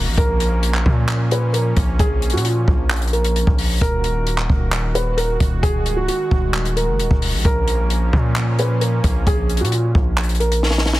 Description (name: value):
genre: hip hop, trap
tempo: 132 BPM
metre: 4/4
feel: half-time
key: unclear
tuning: A4 = 441 Hz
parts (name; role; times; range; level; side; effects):
- felt-muted upright piano; melody; 0.0-11.0 s; F4 to Cb5; -24 LUFS; right 1 dB; low-pass filter, digital delay
- warm analog pad; sustained chords; 0.0-11.0 s; Eb3 to Gb4; -28 LUFS; right 1 dB; chorus
- distorted 808-style bass; bass; 0.0-11.0 s; Db1 to Bb2; -19 LUFS; equal; distortion
- compact cocktail drum kit; drums; 0.2-11.0 s; handclaps, hi-hat, kick drum, snare drum; -19 LUFS; equal; soft clipping on snare
room: studio reverb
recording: dense, heavily limited modern master, vinyl crackle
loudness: -16 LUFS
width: side -16 dB against mid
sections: 0.0-11.0 A section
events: drum fill 10.6-11.0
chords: 0.2 Bbm; 3.8 Ebm; 7.4 Bbm